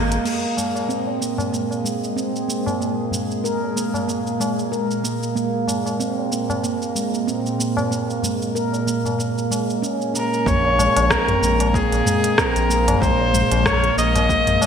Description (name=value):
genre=organic downtempo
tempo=94 BPM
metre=4/4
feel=swing 56% on 16ths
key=Bb minor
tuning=A4 = 441 Hz
part: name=handpan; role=arpeggios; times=0.0-14.7 s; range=Ab3 to Bb4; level=-23 LUFS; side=right 2 dB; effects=low-pass filter, ping-pong delay
part: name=round analog bass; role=bass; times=0.0-0.2, 10.5-14.6 s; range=Ab1 to Bb1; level=-22 LUFS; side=left 1 dB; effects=sidechain pumping
part: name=organic electronic drum kit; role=drums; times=0.1-14.7 s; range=crash cymbal, hi-hat, rim click, shaker, toms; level=-25 LUFS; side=equal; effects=gated reverb
part: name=ethereal airy pad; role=sustained chords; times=0.8-14.7 s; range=Bb2 to Bb3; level=-28 LUFS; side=right 1 dB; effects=ensemble chorus, built-in reverb, sidechain pumping
part: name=tabla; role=percussion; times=0.6-14.7 s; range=none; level=-30 LUFS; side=left 3 dB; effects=none
part: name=rich kamancheh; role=melody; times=10.2-14.7 s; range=Ab4 to Eb5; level=-20 LUFS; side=left 1 dB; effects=ping-pong delay
part: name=electronic kick drum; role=drums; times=10.5-14.4 s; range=none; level=-26 LUFS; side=left 1 dB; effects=overdrive
room=wet lush hall reverb, RT60 2.8 s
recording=bright 1980s-style digital production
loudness=-18 LUFS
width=side -7 dB against mid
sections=0.3-10.5 A section; 10.5-14.7 B section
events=filter sweep on handpan 0.3-10.5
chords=0.3 Bb7(no3); 10.5 Bbm7